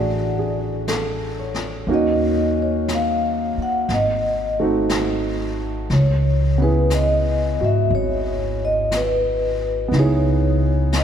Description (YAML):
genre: jazz ballad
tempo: 60 BPM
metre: 4/4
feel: swing 69% on 8ths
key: C# minor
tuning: A4 = 439 Hz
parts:
  - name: vibraphone with soft mallets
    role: melody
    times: 0.0-11.0 s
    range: B4 to F#5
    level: -23 LUFS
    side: left 2 dB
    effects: none
  - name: warm concert grand piano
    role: accompaniment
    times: 0.0-11.0 s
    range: A3 to C#5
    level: -23 LUFS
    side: right 2 dB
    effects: none
  - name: upright bass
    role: bass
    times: 0.0-11.0 s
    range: G#1 to G#2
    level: -21 LUFS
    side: equal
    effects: none
  - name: jazz brush drum kit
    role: drums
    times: 0.9-11.0 s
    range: brushed snare drum, hi-hat, snare drum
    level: -30 LUFS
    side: left 2 dB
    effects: none
room: moderate cathedral reverb, RT60 4.6 s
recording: recorded in a church or concert hall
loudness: -18 LUFS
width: side -8 dB against mid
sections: 0.0-11.0 A section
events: none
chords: 0.0 Dadd9; 1.9 D#m7; 3.9 G#7b9; 5.9 C#m9